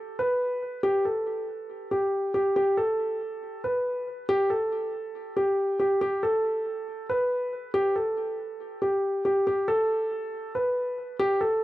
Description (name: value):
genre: hip hop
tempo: 139 BPM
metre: 4/4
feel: half-time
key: unclear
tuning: A4 = 442 Hz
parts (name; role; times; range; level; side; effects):
- dark concert grand piano; solo; 0.0-11.6 s; G4 to B4; -25 LUFS; equal; tape echo
room: light reverb, small room ambience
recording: dry, gritty hardware recording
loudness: -25 LUFS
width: side -16 dB against mid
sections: 0.0-2.6 A section; 2.6-11.6 B section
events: none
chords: none